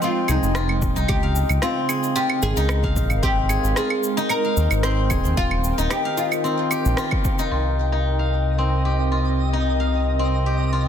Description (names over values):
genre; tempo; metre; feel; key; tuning
organic downtempo; 112 BPM; 4/4; swing 53% on 16ths; unclear; A4 = 440 Hz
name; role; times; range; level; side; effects
oud; melody; 0.0-7.2 s; Eb4 to C5; -26 LUFS; left 1 dB; digital delay
airy breathy pad; sustained chords; 0.0-10.9 s; C3 to G5; -28 LUFS; right 1 dB; chorus, sidechain pumping
steel-string zither; arpeggios; 0.0-10.9 s; C4 to F5; -25 LUFS; left 2 dB; low-pass filter, digital delay
electronic shaker, claves and rim click; drums; 0.0-10.8 s; none; -28 LUFS; right 2 dB; low-pass filter on perc, soft clipping on snare, low-pass filter on snare
smooth gliding synth bass; bass; 0.3-10.9 s; Eb1 to Eb2; -21 LUFS; equal; sidechain pumping
electronic kick drum; drums; 0.8-7.4 s; none; -24 LUFS; equal; overdrive
twinkling granular texture; texture; 8.2-10.9 s; Eb5; -35 LUFS; equal; built-in reverb
room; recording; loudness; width
light reverb; dense, heavily limited modern master; -18 LUFS; side -8 dB against mid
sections
0.0-7.5 A section; 7.5-10.9 B section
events
band accent 7.0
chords
0.0 Fm7; 1.1 Db6; 3.2 Abmaj7; 7.5 Cm7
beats
0.02 0.55 | 1.09 1.62 2.16 2.69 | 3.23 3.77 4.30 4.84 | 5.37 5.91 6.45 6.98 | 7.52 8.05 8.59 9.12 | 9.66 10.20 10.73